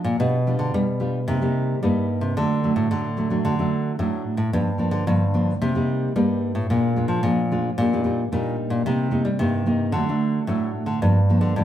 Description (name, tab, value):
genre	samba and choro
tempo	111 BPM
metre	4/4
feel	straight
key	G minor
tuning	A4 = 444 Hz
part	nylon-string guitar	accompaniment	0.0-11.6 s	G2 to F4	-22 LUFS	right 1 dB	none
part	nylon-string guitar	bass	0.0-11.6 s	G2 to G3	-23 LUFS	left 1 dB	none
room	wet studio reverb, RT60 0.9 s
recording	heard from further back in the room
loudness	-20 LUFS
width	side -11 dB against mid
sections	0.0-11.6 A section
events	none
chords	0.2 G7/B; 1.3 Cm7; 2.4 D; 4.5 Gm7; 5.6 Cm7; 6.7 Bb7; 7.8 Ebmaj7/Bb; 8.9 Cm7; 9.9 D; 11.0 Gm7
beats	| 0.20 0.74 1.28 1.82 | 2.37 2.91 3.45 3.99 | 4.53 5.07 5.61 6.15 | 6.69 7.24 7.78 8.32 | 8.86 9.40 9.94 10.48 | 11.02 11.56